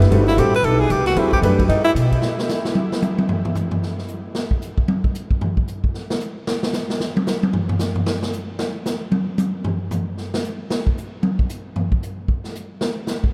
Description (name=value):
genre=modal jazz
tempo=227 BPM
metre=4/4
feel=swing 61% on 8ths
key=C lydian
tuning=A4 = 442 Hz
part: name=clear baby grand piano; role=accompaniment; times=0.0-1.6 s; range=G3 to B4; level=-26 LUFS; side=equal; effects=none
part: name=upright bass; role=bass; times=0.0-2.2 s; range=F#1 to B2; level=-20 LUFS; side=equal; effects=none
part: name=swinging big-band drum kit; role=drums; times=0.0-13.3 s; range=hi-hat, kick drum, ride cymbal, snare drum, toms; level=-23 LUFS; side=equal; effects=none
part: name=warm tenor saxophone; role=second line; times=0.3-1.9 s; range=Eb4 to B4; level=-24 LUFS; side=equal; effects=none
room=wet huge ambient reverb, RT60 7.9 s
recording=in a vast, echoing space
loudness=-21 LUFS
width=mono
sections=0.0-2.2 A section; 2.2-13.3 A section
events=tenor saxophone solo 0.0-2.2; drum solo 2.2-13.3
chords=0.0 Cmaj7sus2; 2.2 N.C.